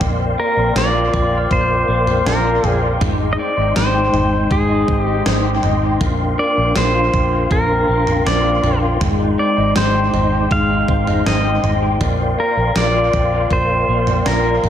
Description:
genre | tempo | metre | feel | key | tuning
dream pop | 80 BPM | 4/4 | straight | unclear | A4 = 438 Hz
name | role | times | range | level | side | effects
mellow tonewheel organ | sustained chords | 0.0-14.7 s | Ab3 to C6 | -22 LUFS | right 1 dB | chorus vibrato, fast rotary speaker
electric guitar through a small old amp | arpeggios | 0.0-14.7 s | Bb2 to G4 | -22 LUFS | left 4 dB | ensemble chorus, dub echo
vintage muted fingered electric bass | bass | 0.0-14.7 s | Ab1 to Bb1 | -20 LUFS | equal | none
gated 80s digital drum machine | drums | 0.0-14.7 s | kick drum, snare drum, toms | -21 LUFS | right 1 dB | gated reverb, gated reverb snare, dub echo
pedal steel guitar | melody | 0.4-14.7 s | Ab4 to F5 | -19 LUFS | equal | dub echo
glockenspiel with soft plastic mallets | texture | 1.1-6.6 s | C6 to G6 | -31 LUFS | equal | dub echo
room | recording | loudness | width
moderate spring reverb, RT60 2.7 s | echo-heavy mix | -14 LUFS | side -10 dB against mid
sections
0.0-14.7 A section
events
none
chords
0.0 Bbadd9; 3.0 Abmaj7; 6.0 Bbadd9; 9.0 Abmaj7; 12.0 Bbadd9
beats
| 0.01 0.76 1.51 2.26 | 3.01 3.76 4.51 5.26 | 6.01 6.76 7.51 8.26 | 9.01 9.76 10.51 11.26 | 12.01 12.76 13.51 14.26

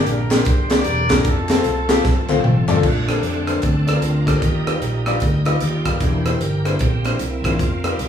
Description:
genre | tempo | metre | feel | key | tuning
uptempo gospel | 151 BPM | 4/4 | swing 63% on 8ths | Bb major | A4 = 440 Hz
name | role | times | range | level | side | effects
warm horn section | melody | 0.0-2.4 s | Bb3 to D5 | -24 LUFS | left 1 dB | none
clear grand piano | accompaniment | 0.0-7.9 s | G2 to A5 | -24 LUFS | left 4 dB | none
bright tonewheel organ | sustained chords | 0.0-8.1 s | D3 to Eb5 | -26 LUFS | right 2 dB | fast rotary speaker, overdrive, chorus vibrato
fingered electric bass | bass | 0.1-8.1 s | E1 to F2 | -21 LUFS | equal | none
crisp fusion drum kit | drums | 0.1-8.1 s | crash cymbal, hi-hat, kick drum, rim click, snare drum, toms | -20 LUFS | equal | none
group handclap | percussion | 0.3-2.8 s | none | -32 LUFS | left 2 dB | none
room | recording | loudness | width
wet large studio reverb, RT60 0.9 s | band playing live in one room, studio reverb | -16 LUFS | side -8 dB against mid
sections
0.0-2.8 A section; 2.8-8.1 B section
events
drum fill 2.0-2.8; grand piano fill 2.0-2.8; tonewheel organ solo 2.8-8.1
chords
0.0 Gm; 1.3 F; 2.8 Bbmaj9; 4.4 Ebmaj9; 6.0 C9/E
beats
0.07 0.46 0.86 | 1.25 1.65 2.04 2.44 | 2.84 3.23 3.63 4.03 | 4.42 4.82 5.21 5.61 | 6.01 6.40 6.80 7.20 | 7.59 7.99

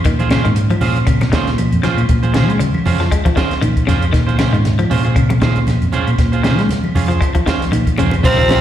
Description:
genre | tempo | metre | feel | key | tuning
afrobeat | 117 BPM | 4/4 | swing 55% on 16ths | Bb minor | A4 = 439 Hz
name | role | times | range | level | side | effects
compact cocktail drum kit | drums | 0.0-8.6 s | hi-hat, kick drum, snare drum | -18 LUFS | equal | none
electric guitar at the edge of break-up | arpeggios | 0.1-8.6 s | C3 to Ab3 | -20 LUFS | left 4 dB | phaser, slapback echo
fingered electric bass | bass | 0.1-8.6 s | Bb1 to Ab3 | -16 LUFS | equal | none
congas | percussion | 0.1-8.6 s | none | -22 LUFS | right 1 dB | slapback echo
electric guitar at the edge of break-up | stabs | 0.2-8.6 s | Db4 to C5 | -21 LUFS | right 7 dB | slapback echo
claves | percussion | 0.3-8.6 s | none | -34 LUFS | equal | slapback echo
raspy baritone saxophone | second line | 8.2-8.6 s | C3 | -26 LUFS | left 2 dB | slapback echo, analog delay
bright reed electric piano | accompaniment | 8.2-8.6 s | C3 to C4 | -25 LUFS | left 3 dB | none
raspy tenor saxophone | melody | 8.3-8.6 s | C4 | -13 LUFS | equal | none
warm trombone | second line | 8.3-8.6 s | F3 | -23 LUFS | left 1 dB | slapback echo
room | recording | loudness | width
little or no reverb | live gig heard through the venue's PA, recital hall reverb | -12 LUFS | side -11 dB against mid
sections
0.0-8.2 A section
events
drum fill 7.6-8.2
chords
0.0 Bbm9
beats
| 0.05 0.56 1.07 1.58 | 2.09 2.60 3.12 3.63 | 4.14 4.65 5.16 5.67 | 6.19 6.70 7.21 7.72 | 8.24

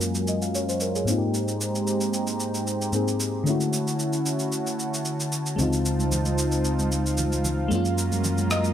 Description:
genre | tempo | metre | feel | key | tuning
amapiano | 113 BPM | 4/4 | straight | Db major | A4 = 440 Hz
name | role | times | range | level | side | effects
FM electric piano with soft pad layer | accompaniment | 0.0-8.7 s | Gb2 to F5 | -26 LUFS | left 2 dB | chorus, low-pass filter
warm analog pad | sustained chords | 0.0-8.7 s | Gb3 to Bb5 | -30 LUFS | right 2 dB | chorus, low-pass filter
electronic shaker and rim click | drums | 0.0-8.7 s | none | -30 LUFS | right 1 dB | overdrive
fingered electric bass | bass | 5.6-8.7 s | Db2 to Gb2 | -25 LUFS | right 1 dB | none
congas | percussion | 5.6-8.5 s | none | -34 LUFS | right 4 dB | none
room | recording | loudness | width
light reverb | none | -23 LUFS | side -10 dB against mid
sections
0.0-8.7 A section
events
filter sweep 0.0-8.7; FM electric piano fill 8.2-8.7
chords
0.0 Gbmaj9; 1.1 Abmaj9; 3.5 Dmaj9; 5.6 Dbmaj9; 7.7 Gbmaj9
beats
0.28 0.81 | 1.34 1.87 2.40 2.93 | 3.46 4.00 4.53 5.06 | 5.59 6.12 6.65 7.18 | 7.71 8.24

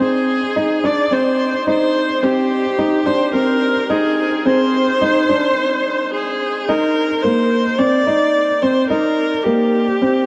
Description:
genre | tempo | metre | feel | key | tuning
electronica | 108 BPM | 4/4 | straight | C minor | A4 = 440 Hz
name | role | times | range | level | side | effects
rich viola | melody | 0.0-10.3 s | G4 to D5 | -20 LUFS | equal | none
felt-muted upright piano | riff | 0.0-10.2 s | Bb3 to Eb4 | -19 LUFS | equal | none
room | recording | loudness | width
wet huge ambient reverb, RT60 7.0 s | dark, warm production | -17 LUFS | mono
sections
0.0-6.7 A section; 6.7-10.3 B section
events
build-up 0.0-6.7; break 5.6-6.7; drop 6.7-10.3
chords
0.0 Ab/C; 6.7 Cm7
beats
| 0.01 0.57 1.12 1.68 | 2.24 2.79 3.35 3.90 | 4.46 5.01 5.57 6.12 | 6.68 7.24 7.79 8.35 | 8.90 9.46 10.01

